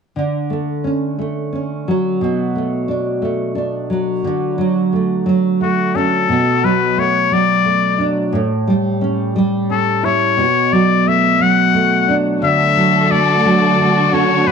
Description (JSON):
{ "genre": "six-eight pop ballad", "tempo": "59 BPM (dotted quarters)", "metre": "6/8", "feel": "straight", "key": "D major", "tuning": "A4 = 441 Hz", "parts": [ { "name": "nylon-string guitar", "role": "accompaniment", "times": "0.2-14.5 s", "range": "A2 to E4", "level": "-16 LUFS", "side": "right 2 dB", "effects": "double-tracked left and right" }, { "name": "trumpet with straight mute", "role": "melody", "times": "5.6-14.5 s", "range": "F#4 to F#5", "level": "-15 LUFS", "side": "left 9 dB", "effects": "none" }, { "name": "warm studio string section", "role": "sustained chords", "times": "12.4-14.5 s", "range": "D3 to A4", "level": "-18 LUFS", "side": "right 2 dB", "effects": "none" } ], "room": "moderate echo chamber reverb, RT60 1.5 s, small room ambience", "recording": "none", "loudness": "-13 LUFS", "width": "side -6 dB against mid", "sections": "0.2-4.2 A section; 4.2-14.5 B section", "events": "none", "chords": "0.2 Dmaj7; 2.2 Bm7; 4.2 Dmaj7; 6.3 Bm7; 8.3 A7; 10.4 Bm7; 12.4 Dmaj7" }